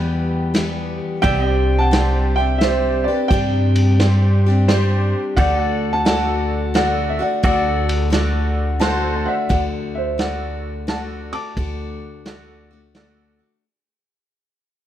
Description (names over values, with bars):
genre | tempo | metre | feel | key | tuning
honky-tonk and classic country | 87 BPM | 3/4 | swing 66% on 8ths | D mixolydian | A4 = 439 Hz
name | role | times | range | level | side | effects
dark upright piano | melody | 0.0-12.9 s | B4 to D6 | -22 LUFS | right 1 dB | none
picked steel-string acoustic guitar | accompaniment | 0.0-13.6 s | C3 to G4 | -24 LUFS | left 4 dB | none
pedal steel guitar | sustained chords | 0.0-9.5 s | C4 to E5 | -29 LUFS | equal | none
upright bass | bass | 0.0-13.4 s | C2 to G2 | -20 LUFS | equal | none
vintage drum kit | drums | 0.5-13.2 s | kick drum, ride cymbal, snare drum | -22 LUFS | equal | none
honky-tonk upright piano | accompaniment | 1.9-13.5 s | F#4 to A5 | -27 LUFS | right 3 dB | none
room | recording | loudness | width
moderate studio reverb, RT60 0.8 s | none | -16 LUFS | side -11 dB against mid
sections
0.0-9.5 A section; 9.5-13.6 B section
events
honky-tonk piano fill 8.5-9.5; fade-out 9.5-13.6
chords
0.0 Em; 1.2 Csus2; 5.4 D